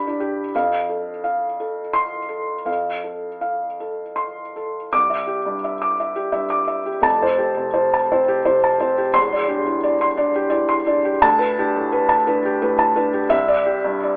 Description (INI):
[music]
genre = neoclassical minimalist piano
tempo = 85 BPM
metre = 3/4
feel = rubato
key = C major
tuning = A4 = 440 Hz
[part]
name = felt-muted upright piano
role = solo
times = 0.0-14.2 s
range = E1 to D6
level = -20 LUFS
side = equal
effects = none
[sound]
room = wet studio reverb, RT60 0.5 s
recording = heard from further back in the room, telephone sound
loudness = -20 LUFS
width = mono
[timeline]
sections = 0.0-4.9 A section; 4.9-14.2 B section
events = none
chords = 0.0 G; 0.5 F; 4.9 Cadd9; 7.0 Fadd9; 9.2 Cadd9/E; 11.2 Gadd9/D; 13.3 Cadd9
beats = | 0.53 1.23 1.94 | 2.67 3.43 4.18 | 4.92 5.63 6.33 | 7.04 7.74 8.45 | 9.15 9.85 10.54 | 11.24 11.94 12.63 | 13.32 14.01